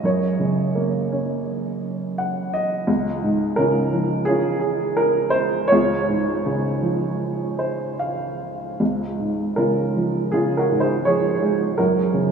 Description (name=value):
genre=classical, lyrical solo piano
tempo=72-87 BPM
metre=4/4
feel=rubato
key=Db major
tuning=A4 = 440 Hz
part: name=dark upright piano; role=solo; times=0.0-12.3 s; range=Db2 to Gb5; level=-19 LUFS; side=right 1 dB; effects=none
room=wet cathedral reverb, RT60 6.1 s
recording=in a vast, echoing space, studio reverb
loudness=-19 LUFS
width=side -6 dB against mid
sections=0.0-8.8 A section; 8.8-12.3 B section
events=upright piano fill 1.8-2.9, 7.2-8.8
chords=0.0 Gb; 2.9 Db; 11.8 Gb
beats=| 0.03 0.75 1.47 2.18 | 2.88 3.58 4.28 5.00 | 5.72 6.45 7.20 7.99 | 8.81 9.58 10.33 11.07 | 11.79